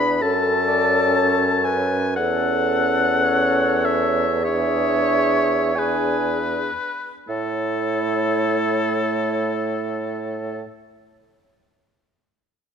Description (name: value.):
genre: classical, slow romantic movement for wind quintet.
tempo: 38-65 BPM.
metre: 4/4.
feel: rubato.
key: A major.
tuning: A4 = 440 Hz.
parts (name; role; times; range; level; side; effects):
mellow hollow silver concert flute; melody; 0.0-10.6 s; G#4 to C#5; -26 LUFS; left 9 dB; none.
clear oboe; second line; 0.0-10.6 s; A4 to B5; -23 LUFS; left 4 dB; none.
mellow French horn; accompaniment; 0.0-10.6 s; A3 to D4; -28 LUFS; equal; none.
mellow clarinet; accompaniment; 0.0-10.6 s; E4 to G#5; -26 LUFS; right 10 dB; none.
warm bassoon; bass; 0.0-10.6 s; E2 to A2; -24 LUFS; right 3 dB; none.
room: moderate scoring stage reverb, RT60 1.9 s.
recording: none.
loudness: -18 LUFS.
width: side -7 dB against mid.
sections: 0.0-7.3 A section; 7.3-12.7 B section.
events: slowing down 0.0-7.3.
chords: 0.2 F#m; 2.2 A/E; 4.4 E7; 7.3 A.